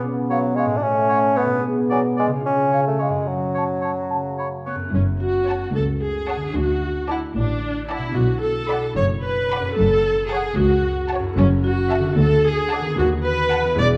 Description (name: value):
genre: cinematic, playful, whimsical film cue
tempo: 74 BPM (dotted quarters)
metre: 6/8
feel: straight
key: F# minor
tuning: A4 = 440 Hz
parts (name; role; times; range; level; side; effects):
- clear bassoon; accompaniment; 0.0-4.7 s; F#3 to D4; -24 LUFS; equal; none
- mellow French horn section; sustained chords; 0.0-4.8 s; C#3 to B3; -28 LUFS; equal; none
- concert harp; arpeggios; 0.0-14.0 s; F#2 to A4; -30 LUFS; equal; none
- clear oboe; second line; 0.3-4.8 s; C#5 to D5; -33 LUFS; equal; none
- mellow hollow concert flute; second line; 0.3-4.9 s; E#5 to F#6; -32 LUFS; equal; none
- marimba with medium mallets; melody; 4.7-14.0 s; B3 to D5; -31 LUFS; equal; none
- rich chamber viola section; accompaniment; 4.7-13.9 s; B3 to D5; -24 LUFS; equal; none
- clear chamber double bass section; bass; 4.9-14.0 s; E1 to D#2; -27 LUFS; equal; none
- warm chamber cello section; bass; 4.9-14.0 s; C#2 to D3; -27 LUFS; equal; none
- clear studio violin section; melody; 5.5-13.7 s; A5 to B5; -35 LUFS; equal; none
- rich chamber violin section; second line; 5.5-13.7 s; C#5 to F#5; -33 LUFS; equal; none
room: moderate recital hall reverb, RT60 1.4 s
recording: dark, warm production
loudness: -21 LUFS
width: mono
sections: 0.0-4.9 A section; 4.9-14.0 B section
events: none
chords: 0.0 C#7/B; 0.8 F#m/A; 1.6 G#dim/B; 2.4 C#; 3.3 F#m; 6.5 D; 8.2 Bm7; 9.8 F#m; 11.4 F#m7; 12.2 D; 13.0 B7/D#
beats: | 0.02 0.82 | 1.63 2.44 | 3.27 4.10 | 4.93 5.74 | 6.55 7.36 | 8.16 8.97 | 9.77 10.58 | 11.38 12.18 | 12.99 13.79